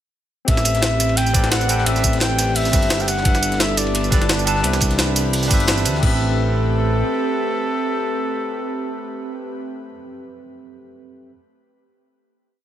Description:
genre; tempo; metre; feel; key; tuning
liquid drum and bass; 173 BPM; 4/4; swing 54% on 16ths; A minor; A4 = 440 Hz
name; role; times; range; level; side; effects
barky tine electric piano; accompaniment; 0.4-11.3 s; C4 to A5; -26 LUFS; equal; overdrive, auto-pan, tape echo
warm flugelhorn; melody; 0.5-9.6 s; A4 to G5; -24 LUFS; left 1 dB; dub echo
airy breathy pad; sustained chords; 0.5-9.6 s; E3 to B5; -27 LUFS; right 1 dB; chorus, sidechain pumping
smooth synth bass; bass; 0.5-7.0 s; G1 to D2; -21 LUFS; equal; none
crunchy breakbeat drum kit; drums; 0.5-6.0 s; hi-hat, ride cymbal, snare drum; -29 LUFS; left 1 dB; high-pass filter on cymbals, studio reverb, high-pass filter on hats, high-pass filter on snare, high-pass filter on room
electronic kick drum; drums; 0.5-6.1 s; none; -19 LUFS; equal; overdrive, studio reverb
jungle sampler-style drum kit; drums; 0.5-6.1 s; crash cymbal, hi-hat, snare drum, tambourine; -22 LUFS; right 1 dB; overdrive, studio reverb
room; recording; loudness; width
light reverb, studio reverb; none; -16 LUFS; side -11 dB against mid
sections
0.5-6.0 drop; 6.0-8.8 final chord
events
drop 0.5-6.0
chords
0.5 Am9; 3.1 G69; 4.6 Cmaj9; 6.0 Am9

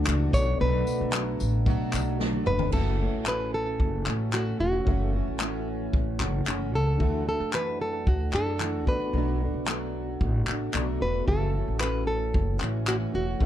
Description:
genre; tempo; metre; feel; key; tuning
acoustic pop; 112 BPM; 4/4; straight; unclear; A4 = 443 Hz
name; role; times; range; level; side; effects
nylon-string guitar; melody; 0.0-13.5 s; F#4 to C#5; -30 LUFS; equal; slapback echo
barky reed electric piano; accompaniment; 0.0-13.5 s; B3 to E5; -40 LUFS; left 6 dB; overdrive, fast tremolo
fingerpicked plugged-in steel-string acoustic guitar; accompaniment; 0.0-13.5 s; F#2 to F#4; -31 LUFS; equal; double-tracked left and right
upright bass; bass; 0.0-13.5 s; E1 to F#2; -29 LUFS; equal; none
unplugged drum kit; drums; 0.1-13.5 s; crash cymbal, handclaps, kick drum, snare drum, tambourine, toms; -28 LUFS; equal; none
room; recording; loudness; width
little or no reverb; lossy compression artefacts; -24 LUFS; side -11 dB against mid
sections
0.0-2.7 A section; 2.7-13.5 B section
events
drum fill 2.2-2.7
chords
0.3 Bm7; 2.7 F#m7; 7.0 Dadd9; 8.9 Bm7; 11.3 F#m7

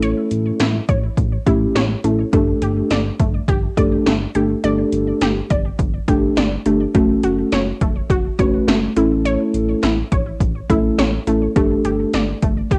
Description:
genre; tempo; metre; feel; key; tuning
synth-pop; 104 BPM; 4/4; straight; unclear; A4 = 440 Hz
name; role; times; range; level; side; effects
muted felt-like synth keys; accompaniment; 0.0-12.2 s; A3 to B4; -20 LUFS; equal; chorus, cassette tape
unison pluck; arpeggios; 0.0-12.8 s; A3 to D5; -27 LUFS; equal; cassette tape, analog delay
smooth synth bass; bass; 0.0-12.8 s; F#1 to A1; -26 LUFS; equal; none
80s electronic pad drums; drums; 0.0-12.8 s; hi-hat, kick drum, snare drum; -22 LUFS; equal; overdrive, vintage 12-bit sampler grit
room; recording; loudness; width
moderate studio reverb, RT60 0.5 s; home recording on cassette; -18 LUFS; mono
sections
0.0-12.8 A section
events
none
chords
0.0 A; 2.3 Gsus2; 6.9 F#m; 9.0 A; 11.6 Gsus2

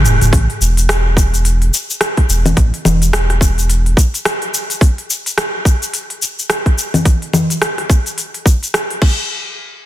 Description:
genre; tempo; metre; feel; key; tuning
organic downtempo; 107 BPM; 4/4; swing 59% on 16ths; unclear; A4 = 440 Hz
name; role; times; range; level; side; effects
warm sub bass; bass; 0.0-3.9 s; E1 to A1; -14 LUFS; equal; sidechain pumping
afro-pop drum kit; drums; 0.0-9.2 s; congas, crash cymbal, hi-hat, rim click, shaker, toms; -16 LUFS; left 1 dB; soft clipping on snare
electronic kick drum; drums; 0.3-9.2 s; none; -11 LUFS; equal; overdrive
room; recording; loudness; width
light reverb; dense, heavily limited modern master; -12 LUFS; side -14 dB against mid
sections
0.3-9.3 A section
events
drum fill 0.0-0.3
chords
none

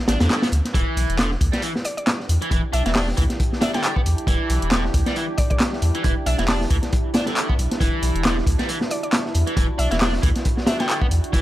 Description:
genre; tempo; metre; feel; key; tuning
breakbeat, breaks; 136 BPM; 4/4; swing 57% on 16ths; E minor; A4 = 438 Hz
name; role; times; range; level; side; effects
biting overdriven guitar; riff; 0.1-11.4 s; D3 to D4; -28 LUFS; equal; analog delay
saturated sub bass; bass; 0.1-11.4 s; E1 to E2; -21 LUFS; equal; none
crunchy breakbeat drum kit; drums; 0.1-11.4 s; hi-hat, kick drum, snare drum; -21 LUFS; equal; none
punchy analog drum machine; drums; 0.1-11.4 s; handclaps, hi-hat; -28 LUFS; equal; none
deep dark ambient pad; sustained chords; 1.9-11.4 s; D4 to G4; -30 LUFS; right 1 dB; chorus, built-in reverb, sidechain pumping
mallet-like synth pluck; melody; 1.9-11.0 s; D5 to A5; -30 LUFS; equal; chorus, small speaker sound, analog delay
room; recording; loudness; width
studio ambience; dry, gritty hardware recording; -18 LUFS; side -15 dB against mid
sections
0.0-11.4 A section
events
none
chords
0.0 Em9

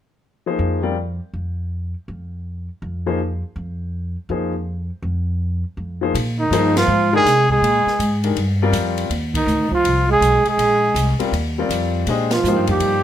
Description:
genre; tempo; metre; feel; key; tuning
modal jazz; 162 BPM; 4/4; swing 64% on 8ths; Bb mixolydian; A4 = 440 Hz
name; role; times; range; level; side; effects
warm grand piano; accompaniment; 0.5-13.0 s; Eb3 to Eb5; -22 LUFS; left 5 dB; none
upright bass; bass; 0.6-13.0 s; Bb1 to C3; -22 LUFS; equal; none
open jazz drum kit; drums; 6.2-12.9 s; hi-hat, kick drum, ride cymbal, snare drum; -28 LUFS; equal; none
dark trumpet; melody; 6.4-13.0 s; Eb4 to Ab4; -17 LUFS; equal; plate reverb
mellow trombone; second line; 6.4-13.0 s; Eb3 to Ab3; -22 LUFS; right 7 dB; none
room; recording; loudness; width
light reverb; none; -17 LUFS; side -10 dB against mid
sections
0.2-6.1 A section; 6.1-13.0 B section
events
band accent 6.7, 9.3, 12.3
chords
0.2 Bb9sus4; 12.1 Gm7

